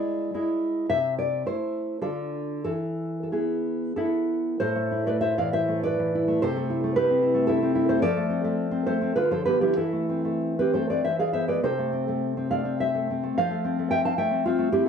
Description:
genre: romantic piece for solo classical guitar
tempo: 88-115 BPM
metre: 3/4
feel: rubato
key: A minor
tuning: A4 = 440 Hz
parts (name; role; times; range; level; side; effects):
- nylon-string guitar; solo; 0.0-14.9 s; A2 to A5; -23 LUFS; equal; slapback echo
room: small room reverb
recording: dry, close 1970s-style studio recording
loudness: -23 LUFS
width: side -7 dB against mid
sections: 0.0-4.6 A section; 4.6-14.9 B section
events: none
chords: 0.0 E7; 0.9 Am/C; 2.0 Dm; 2.7 E; 4.6 Am; 6.4 Am/C; 8.0 F; 9.2 Bdim/D; 9.8 Am/E; 11.0 E; 11.6 Am/C; 13.4 F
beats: 0.33 | 0.88 1.45 2.02 | 2.65 3.32 3.96 | 4.61 5.22 5.83 | 6.42 6.96 7.48 | 8.03 8.59 9.15 | 9.76 10.42 11.04 | 11.64 12.22 12.79 | 13.36 13.91 14.45

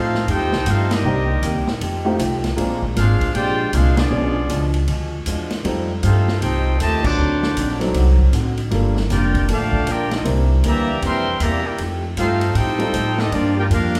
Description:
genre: jazz, big band swing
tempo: 156 BPM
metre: 4/4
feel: swing 64% on 8ths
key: F major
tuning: A4 = 439 Hz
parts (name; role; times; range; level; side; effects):
- warm trumpet section; melody; 0.0-14.0 s; Bb3 to D6; -26 LUFS; equal; none
- mellow trombone section; second line; 0.0-14.0 s; C3 to G4; -27 LUFS; equal; none
- picked old ladder-braced acoustic guitar; accompaniment; 0.0-14.0 s; G2 to G4; -29 LUFS; equal; none
- upright bass; bass; 0.0-14.0 s; F1 to A2; -22 LUFS; equal; none
- swinging big-band drum kit; drums; 0.1-14.0 s; crash cymbal, hi-hat, kick drum, ride cymbal, snare drum; -30 LUFS; equal; none
- warm baby grand piano; accompaniment; 1.0-12.9 s; F#3 to Bb4; -27 LUFS; equal; none
room: moderate recital hall reverb, RT60 1.5 s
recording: recorded in a church or concert hall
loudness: -19 LUFS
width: mono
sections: 0.0-14.0 A section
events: band accent 0.9, 3.9, 7.0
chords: 0.0 F9; 1.0 Cm7; 1.8 F9; 2.6 Bb9; 4.1 Bdim7; 5.6 F9; 7.2 D7b9; 8.7 Gm7; 10.2 C9; 11.8 F9; 13.3 Gm7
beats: 0.28 0.66 | 1.04 1.43 1.81 2.19 | 2.58 2.96 3.35 3.73 | 4.11 4.50 4.88 5.26 | 5.65 6.03 6.41 6.80 | 7.18 7.56 7.95 8.33 | 8.71 9.10 9.48 9.87 | 10.25 10.63 11.02 11.40 | 11.78 12.17 12.55 12.94 | 13.32 13.70

